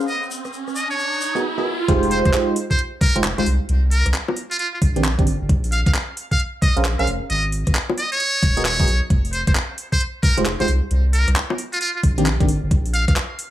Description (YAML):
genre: UK garage, two-step garage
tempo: 133 BPM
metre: 4/4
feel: swing 64% on 16ths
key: F minor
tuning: A4 = 440 Hz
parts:
  - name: FM electric piano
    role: stabs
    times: 0.0-12.5 s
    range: Eb3 to F5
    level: -22 LUFS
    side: right 1 dB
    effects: chorus, phaser, tape echo
  - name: tube shaker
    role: percussion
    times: 0.0-1.4 s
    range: none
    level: -34 LUFS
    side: left 5 dB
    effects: none
  - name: riser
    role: sound effects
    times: 0.0-1.9 s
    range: none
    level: -27 LUFS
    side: right 2 dB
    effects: none
  - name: trumpet with metal mute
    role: melody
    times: 0.1-13.1 s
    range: F4 to F5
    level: -24 LUFS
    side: equal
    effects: tape echo
  - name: garage drum kit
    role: drums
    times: 0.1-13.5 s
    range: bongos, handclaps, hi-hat, rim click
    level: -26 LUFS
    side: equal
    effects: low-pass filter on hats, low-pass filter on snare, low-pass filter on perc
  - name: soft dub sub bass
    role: bass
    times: 1.9-13.2 s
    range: Eb1 to C2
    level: -20 LUFS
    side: equal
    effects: none
  - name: electronic kick drum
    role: drums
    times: 1.9-13.1 s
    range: none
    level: -18 LUFS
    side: equal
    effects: none
room: light reverb, digital ambience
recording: small room ambience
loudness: -17 LUFS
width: side -13 dB against mid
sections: 0.0-1.9 A section; 1.9-13.5 B section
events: riser 0.0-1.9; drop 1.9-13.5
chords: 0.1 Abm9; 1.9 Fm9; 3.5 C7(no3); 5.5 Bb5; 7.3 Abm; 9.1 F5; 10.7 C7(no3); 12.7 N.C.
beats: | 0.08 0.53 0.98 1.43 | 1.89 2.34 2.79 3.24 | 3.69 4.14 4.59 5.04 | 5.49 5.95 6.40 6.85 | 7.30 7.75 8.20 8.65 | 9.10 9.55 10.01 10.46 | 10.91 11.36 11.81 12.26 | 12.71 13.16